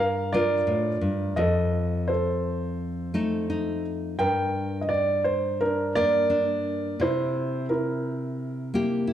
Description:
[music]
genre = acoustic folk-pop ballad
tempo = 86 BPM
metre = 4/4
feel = straight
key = unclear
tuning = A4 = 440 Hz
[part]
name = warm grand piano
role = melody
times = 0.0-9.1 s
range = D4 to G5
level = -25 LUFS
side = right 1 dB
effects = slapback echo
[part]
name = nylon-string guitar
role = accompaniment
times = 0.0-9.1 s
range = F2 to A4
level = -27 LUFS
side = left 1 dB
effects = none
[sound]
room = moderate recital hall reverb, RT60 1.6 s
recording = dark, warm production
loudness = -23 LUFS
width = side -10 dB against mid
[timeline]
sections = 0.0-9.1 A section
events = none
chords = 0.0 Gm7; 1.4 F7; 4.2 Gm; 7.0 C7

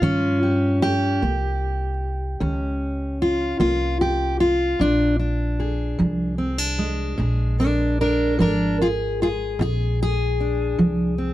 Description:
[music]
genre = acoustic country blues, solo or duo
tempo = 50 BPM (dotted quarters)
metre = 12/8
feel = straight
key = unclear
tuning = A4 = 440 Hz
[part]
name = fingerpicked steel-string acoustic guitar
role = melody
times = 0.0-11.3 s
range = Bb2 to Bb4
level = -21 LUFS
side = equal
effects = none
[part]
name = upright bass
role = bass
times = 0.0-11.3 s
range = Ab1 to G2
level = -24 LUFS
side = equal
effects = none
[sound]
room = little or no reverb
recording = dry, close 1970s-style studio recording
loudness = -19 LUFS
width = side -14 dB against mid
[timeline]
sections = 0.0-11.3 A section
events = none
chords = 0.0 Eb7; 4.8 Bb7

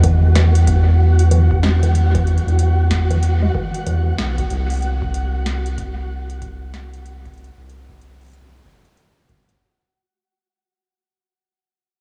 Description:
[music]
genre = IDM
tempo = 94 BPM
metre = 4/4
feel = swing 62% on 16ths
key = unclear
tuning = A4 = 441 Hz
[part]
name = deep acid bass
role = arpeggios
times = 0.0-4.3 s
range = E3 to E4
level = -28 LUFS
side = equal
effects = analog delay
[part]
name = round analog bass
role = bass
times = 0.0-9.6 s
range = G1 to E2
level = -18 LUFS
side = equal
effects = none
[part]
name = booming analog drum machine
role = drums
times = 0.0-9.6 s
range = hi-hat, snare drum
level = -31 LUFS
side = equal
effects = analog delay
[part]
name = electronic kick drum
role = drums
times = 0.0-9.4 s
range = none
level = -26 LUFS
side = equal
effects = none
[part]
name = flickering grainy texture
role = texture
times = 0.0-9.6 s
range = F#4 to F#5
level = -31 LUFS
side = equal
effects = built-in reverb, ensemble chorus
[sound]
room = light reverb, digital ambience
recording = small room ambience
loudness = -16 LUFS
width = mono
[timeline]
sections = 0.0-9.6 A section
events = fade-out 0.0-9.6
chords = 0.0 Esus2; 4.5 C5

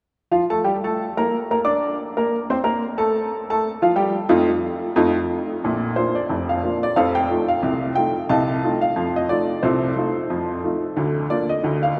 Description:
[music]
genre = ragtime piano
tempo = 90 BPM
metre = 2/4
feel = swing 59% on 16ths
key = Bb major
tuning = A4 = 440 Hz
[part]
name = clear upright piano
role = solo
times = 0.3-12.0 s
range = F1 to D6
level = -21 LUFS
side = equal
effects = none
[sound]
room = wet cathedral reverb, RT60 5.4 s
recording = recorded in a church or concert hall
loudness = -21 LUFS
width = mono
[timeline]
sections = 0.3-5.6 A section; 5.6-12.0 B section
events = none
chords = 0.3 Bb; 3.0 F7; 5.6 Bb; 7.0 F7; 8.3 F7/C; 11.0 Bb/D

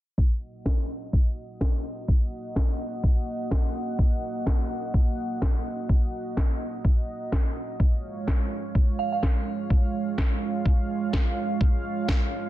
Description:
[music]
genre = bass house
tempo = 126 BPM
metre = 4/4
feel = swing 57% on 16ths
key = Eb minor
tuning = A4 = 442 Hz
[part]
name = dark analog pad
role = sustained chords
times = 0.6-12.5 s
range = Ab3 to Gb5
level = -32 LUFS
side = right 3 dB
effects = chorus, sidechain pumping
[part]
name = electronic kick drum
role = drums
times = 0.2-12.2 s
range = none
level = -22 LUFS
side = equal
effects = none
[part]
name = electronic snare drum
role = drums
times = 0.7-12.2 s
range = none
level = -34 LUFS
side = equal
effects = overdrive
[part]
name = glassy synth bell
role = melody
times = 9.0-9.2 s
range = F5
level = -30 LUFS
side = right 6 dB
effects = chorus, phaser, ping-pong delay
[sound]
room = light reverb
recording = dense, heavily limited modern master, low-pass filter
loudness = -23 LUFS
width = side -15 dB against mid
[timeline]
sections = 0.2-12.5 A section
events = filter sweep 0.2-12.5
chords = 0.2 Ebm; 7.8 Db

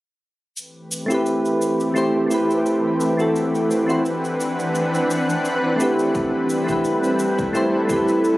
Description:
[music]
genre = sunset chillout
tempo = 86 BPM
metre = 4/4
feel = swing 54% on 16ths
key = A dorian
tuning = A4 = 440 Hz
[part]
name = shimmering ambient pad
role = sustained chords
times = 0.9-8.4 s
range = E3 to F#5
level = -22 LUFS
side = equal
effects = chorus, built-in reverb
[part]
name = cabasa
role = drums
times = 0.6-8.4 s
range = none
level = -34 LUFS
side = equal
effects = small room ambience
[part]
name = soft electric-piano-like synth keys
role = accompaniment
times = 1.1-8.4 s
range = A3 to C5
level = -20 LUFS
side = equal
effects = chorus, auto-pan, digital delay
[part]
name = electronic kick drum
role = drums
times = 6.2-8.0 s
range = none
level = -30 LUFS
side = equal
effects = small room ambience
[sound]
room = light reverb, digital ambience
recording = recorded on a phone in the room, studio reverb, compression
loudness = -18 LUFS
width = side -17 dB against mid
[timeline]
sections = 0.6-8.4 A section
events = none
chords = 0.6 Am9; 3.4 D13; 6.2 Gadd9

